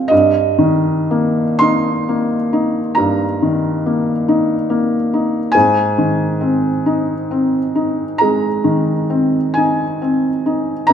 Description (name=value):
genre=classical, romantic nocturne for solo piano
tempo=37-48 BPM (dotted quarters)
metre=12/8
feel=rubato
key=Ab major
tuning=A4 = 443 Hz
part: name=felt-muted upright piano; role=solo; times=0.0-10.9 s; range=Db2 to C6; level=-14 LUFS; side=equal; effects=none
room=wet recital hall reverb, RT60 1.5 s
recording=none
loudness=-14 LUFS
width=side -8 dB against mid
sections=0.0-10.9 A section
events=none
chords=0.1 Eb/G; 5.5 Ab